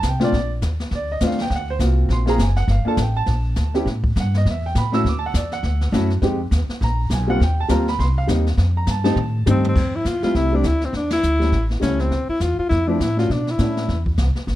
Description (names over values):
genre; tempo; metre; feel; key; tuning
jazz, small-group swing and bop; 204 BPM; 4/4; swing 59% on 8ths; Bb major, F major from 9.8 s; A4 = 439 Hz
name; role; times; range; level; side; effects
warm baby grand piano; accompaniment; 0.0-13.9 s; Bb2 to E6; -22 LUFS; equal; none
upright bass; bass; 0.0-14.6 s; F#1 to B2; -20 LUFS; equal; none
jazz brush drum kit; drums; 0.0-14.6 s; brushed snare drum, crash cymbal, hi-hat, kick drum, ride cymbal, snare drum, toms; -27 LUFS; equal; none
breathy alto saxophone; melody; 9.5-14.1 s; C4 to F4; -22 LUFS; left 1 dB; plate reverb
room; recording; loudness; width
light reverb; dark, warm production; -17 LUFS; side -14 dB against mid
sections
0.3-9.8 A section; 9.8-14.6 B section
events
drum fill 9.2-9.8; band accent 11.1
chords
0.3 Bbmaj7; 1.5 D7alt; 2.7 Gm7; 3.9 A7(no3); 5.0 Dmaj9; 6.2 Fm7; 6.8 Bb5; 7.4 Eb69; 8.6 F7; 9.8 Fmaj9; 10.9 Em7; 11.5 A7; 12.1 Dmadd9; 13.3 Bm11; 13.9 C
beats
0.04 | 0.33 0.62 0.92 1.21 | 1.51 1.80 2.10 2.39 | 2.69 2.98 3.27 3.57 | 3.86 4.16 4.45 4.75 | 5.04 5.34 5.63 5.93 | 6.22 6.52 6.81 7.11 | 7.40 7.70 7.99 8.28 | 8.58 8.87 9.17 9.46 | 9.76 10.05 10.35 10.64 | 10.94 11.23 11.53 11.82 | 12.12 12.41 12.71 13.00 | 13.29 13.59 13.88 14.18 | 14.47